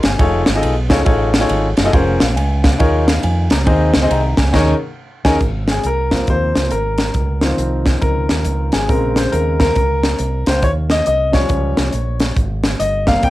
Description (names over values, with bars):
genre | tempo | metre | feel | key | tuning
uptempo gospel | 138 BPM | 4/4 | swing 64% on 8ths | Ab major | A4 = 440 Hz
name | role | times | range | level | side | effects
clear grand piano | accompaniment | 0.0-13.3 s | C3 to Bb5 | -18 LUFS | left 1 dB | cassette tape
fingered electric bass with an envelope filter | bass | 0.0-13.3 s | F1 to F2 | -18 LUFS | right 1 dB | none
crisp fusion drum kit | drums | 0.0-13.3 s | crash cymbal, hi-hat, kick drum, ride cymbal, snare drum | -17 LUFS | equal | none
room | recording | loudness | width
light reverb | home recording on cassette | -13 LUFS | side -16 dB against mid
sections
0.0-5.4 A section; 5.4-13.3 B section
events
band accent 4.5-5.4; grand piano solo 5.4-13.3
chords
0.2 F7alt; 1.9 Bbm9/F; 2.8 Eb9sus4; 3.7 Ab; 4.5 Eb7sus4; 5.4 Ab6; 8.9 Bbm7; 10.6 Eb7; 12.4 Abmaj7